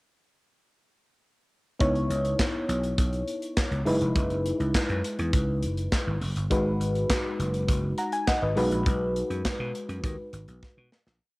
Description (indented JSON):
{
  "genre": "early-eighties boogie funk",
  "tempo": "102 BPM",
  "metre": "4/4",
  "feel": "straight",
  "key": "C# minor",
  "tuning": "A4 = 439 Hz",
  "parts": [
    { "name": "FM electric piano with auto-pan", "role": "accompaniment", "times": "1.8-10.9 s", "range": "G#3 to A#5", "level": "-28 LUFS", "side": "left 1 dB", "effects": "cassette tape" },
    { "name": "vintage slap bass", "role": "bass", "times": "1.8-11.2 s", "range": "E#1 to B2", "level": "-29 LUFS", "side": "equal", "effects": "none" },
    { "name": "tight funk drum kit", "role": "drums", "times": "1.8-11.2 s", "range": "handclaps, hi-hat, kick drum, snare drum", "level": "-28 LUFS", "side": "equal", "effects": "cassette tape" }
  ],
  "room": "light reverb, small room ambience",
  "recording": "home recording on cassette",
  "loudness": "-24 LUFS",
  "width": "side -22 dB against mid",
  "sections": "1.8-11.2 verse",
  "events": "fade-out 8.9-11.2; drum fill 10.6-11.2",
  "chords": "1.8 C#m9; 3.9 F#13sus4; 6.5 G#m7; 8.6 B6"
}